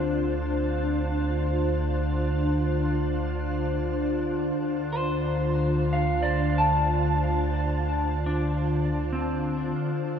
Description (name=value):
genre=ambient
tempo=69 BPM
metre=3/4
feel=straight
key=D minor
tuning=A4 = 440 Hz
part: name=glassy FM pad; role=sustained chords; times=0.0-10.2 s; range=D3 to C5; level=-26 LUFS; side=left 1 dB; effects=ensemble chorus, built-in reverb, shimmer reverb
part: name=clean electric guitar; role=arpeggios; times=0.0-10.2 s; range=C4 to A5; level=-29 LUFS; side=equal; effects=ping-pong delay, shimmer reverb
part: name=warm sub bass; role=bass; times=0.0-9.7 s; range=D2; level=-29 LUFS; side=right 1 dB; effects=none
room=wet huge ambient reverb, RT60 8.5 s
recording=none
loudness=-23 LUFS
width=side -8 dB against mid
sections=0.0-9.8 A section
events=none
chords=0.0 Dm7